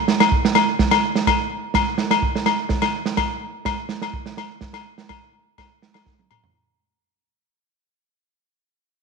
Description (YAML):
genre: highlife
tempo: 125 BPM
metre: 4/4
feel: straight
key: none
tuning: none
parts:
  - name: vintage drum kit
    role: drums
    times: 0.1-6.5 s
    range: kick drum, snare drum, toms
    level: -21 LUFS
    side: right 5 dB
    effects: none
  - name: agogo bells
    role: percussion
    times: 0.2-6.4 s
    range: none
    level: -21 LUFS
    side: left 7 dB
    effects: none
room: moderate echo chamber reverb, RT60 1.6 s, studio ambience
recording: 1960s-style stereo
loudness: -18 LUFS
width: side -4 dB against mid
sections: 0.0-6.5 A section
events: fade-out 0.0-6.5; drum fill 6.1-6.5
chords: none